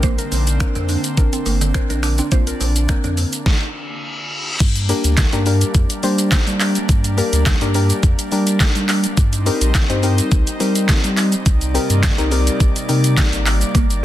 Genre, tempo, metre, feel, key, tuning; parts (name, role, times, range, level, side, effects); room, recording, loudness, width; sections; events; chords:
dance-pop; 105 BPM; 4/4; straight; A4 = 438 Hz
soft round pluck; accompaniment; 0.0-13.5 s; Bb3 to C5; -23 LUFS; left 4 dB; chorus, sidechain pumping
airy breathy pad; sustained chords; 0.0-14.0 s; C3 to D5; -26 LUFS; equal; chorus, sidechain pumping
mallet-like synth pluck; arpeggios; 0.0-3.1 s; D3 to C5; -30 LUFS; right 4 dB; chorus, sidechain pumping, dub echo
mellow electric guitar; riff; 0.0-3.3, 13.7-13.9 s; Bb3 to D4; -27 LUFS; right 7 dB; analog chorus
warm sub bass; bass; 0.0-14.0 s; G1 to G3; -18 LUFS; equal; sidechain pumping
pop drum kit; drums; 0.0-14.0 s; crash cymbal, finger snaps, handclaps, hi-hat, kick drum, shaker, snare drum; -18 LUFS; equal; overdrive, soft clipping on snare
reverse cymbal; sound effects; 3.7-4.6 s; -26 LUFS; left 1 dB
little or no reverb; dense, heavily limited modern master; -14 LUFS; side -13 dB against mid
0.0-4.6 A section; 4.6-14.0 B section
stop 3.5-4.6; reverse cymbal 3.7-4.6
0.0 Bbadd9; 4.6 Gm; 9.2 Eb6; 11.5 Cm7